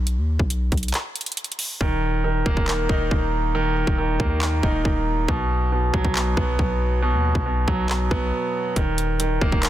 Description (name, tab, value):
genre	hip hop, trap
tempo	138 BPM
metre	4/4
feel	half-time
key	Eb minor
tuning	A4 = 440 Hz
part	long sustained 808-style bass	bass	0.0-9.7 s	Eb1 to D#2	-24 LUFS	equal	none
part	trap drum kit	drums	0.1-9.7 s	handclaps, hi-hat, kick drum	-24 LUFS	equal	none
part	bright grand piano	accompaniment	1.8-9.7 s	B2 to Eb4	-23 LUFS	right 2 dB	low-pass filter
room	digital ambience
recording	dense, heavily limited modern master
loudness	-20 LUFS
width	side -13 dB against mid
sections	0.0-9.7 A section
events	break 0.0-1.8, 8.3-8.8; hi-hats muted 1.8-8.8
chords	0.0 N.C.; 1.8 Eb5; 5.3 B5; 8.8 Eb5